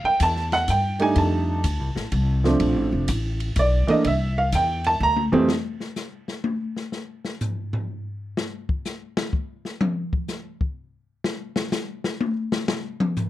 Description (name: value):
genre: jazz piano trio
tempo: 125 BPM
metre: 3/4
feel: swing 67% on 8ths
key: unclear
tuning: A4 = 440 Hz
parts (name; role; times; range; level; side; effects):
- warm upright piano; melody; 0.0-5.5 s; F2 to Bb5; -21 LUFS; right 2 dB; none
- upright bass; bass; 0.0-5.4 s; F1 to G2; -23 LUFS; left 1 dB; none
- open jazz drum kit; drums; 0.2-13.3 s; hi-hat, kick drum, ride cymbal, snare drum, toms; -27 LUFS; left 2 dB; none
room: light reverb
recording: close, detailed microphones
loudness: -21 LUFS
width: side -14 dB against mid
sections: 0.0-5.5 A section; 5.5-13.3 A section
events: upright piano solo 0.0-5.5; drum fill 5.0-5.5; drum solo 5.5-13.3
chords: 0.0 Dsus2 (rootless); 1.2 F13; 2.6 Bbmaj9 (rootless); 4.0 Cadd9; 5.5 N.C.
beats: 0.20 0.68 | 1.16 1.64 2.12 | 2.60 3.08 3.56 | 4.04 4.52 5.00 | 5.48 5.96 6.45 | 6.92 7.41 7.89 | 8.37 8.85 9.33 | 9.81 10.29 10.77 | 11.25 11.73 12.21 | 12.69 13.17